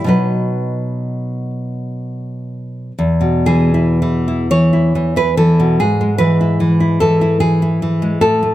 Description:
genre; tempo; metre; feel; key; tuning
romantic piece for solo classical guitar; 38-51 BPM (dotted quarters); 6/8; rubato; E major; A4 = 440 Hz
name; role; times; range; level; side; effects
nylon-string guitar; solo; 0.0-8.5 s; E2 to C#5; -13 LUFS; equal; none
room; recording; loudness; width
moderate recital hall reverb, RT60 1.5 s; close, detailed microphones; -13 LUFS; side -14 dB against mid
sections
0.0-8.5 A section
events
none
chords
0.1 B; 3.0 E; 5.8 E/G#

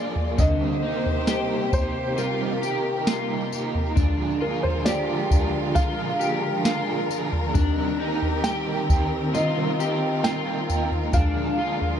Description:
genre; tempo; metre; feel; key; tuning
dream pop; 67 BPM; 4/4; straight; C minor; A4 = 440 Hz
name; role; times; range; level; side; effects
felt-muted upright piano; melody; 0.0-12.0 s; Bb4 to G5; -29 LUFS; right 1 dB; analog delay
overdriven semi-hollow guitar; accompaniment; 0.0-12.0 s; Bb2 to Bb4; -30 LUFS; right 4 dB; tremolo, ensemble chorus
warm studio string section; sustained chords; 0.0-12.0 s; C3 to D5; -28 LUFS; left 1 dB; none
electric guitar at the edge of break-up; arpeggios; 0.0-12.0 s; D3 to G4; -28 LUFS; left 2 dB; analog chorus, analog delay
soft vintage rhythm box; drums; 0.2-12.0 s; kick drum, snare drum, tambourine, toms; -24 LUFS; equal; none
room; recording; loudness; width
light reverb; echo-heavy mix; -21 LUFS; side -9 dB against mid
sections
0.0-12.0 A section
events
none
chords
0.4 Cm7; 4.0 Bb7; 7.5 Cm7; 11.1 Bb7

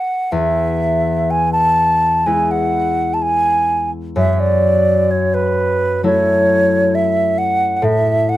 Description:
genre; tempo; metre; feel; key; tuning
celtic folk, Celtic slow air; 60-69 BPM; 4/4; rubato; E mixolydian; A4 = 440 Hz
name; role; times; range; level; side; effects
wooden flute; melody; 0.0-8.4 s; B4 to A5; -15 LUFS; right 1 dB; none
concert harp; accompaniment; 0.3-8.4 s; E2 to E4; -18 LUFS; left 2 dB; none
room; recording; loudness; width
little or no reverb; rough home demo mix; -13 LUFS; side -14 dB against mid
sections
0.3-8.4 A section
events
none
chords
0.3 E; 4.2 F#m7; 7.8 A5

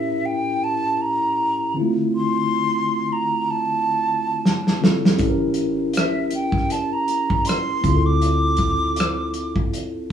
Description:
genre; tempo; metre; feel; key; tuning
R&B, neo-soul; 79 BPM; 4/4; swing 57% on 16ths; D minor; A4 = 440 Hz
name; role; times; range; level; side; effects
silver concert flute; melody; 0.0-9.6 s; E5 to D6; -22 LUFS; right 1 dB; none
mellow tine electric piano; accompaniment; 0.0-10.1 s; A2 to Bb4; -23 LUFS; equal; medium stereo tremolo
warm soul drum kit; drums; 4.5-9.9 s; hi-hat, kick drum, rim click, snare drum; -20 LUFS; equal; none
vintage muted fingered electric bass; bass; 5.2-10.1 s; A1 to D2; -24 LUFS; left 1 dB; none
room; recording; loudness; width
moderate studio reverb, RT60 0.6 s; band playing live in one room, small room reverb; -18 LUFS; side -8 dB against mid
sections
0.0-10.1 A section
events
drum fill 4.4-5.2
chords
0.0 A7b9; 1.8 Dm9; 5.2 A7b9; 7.8 Dm9

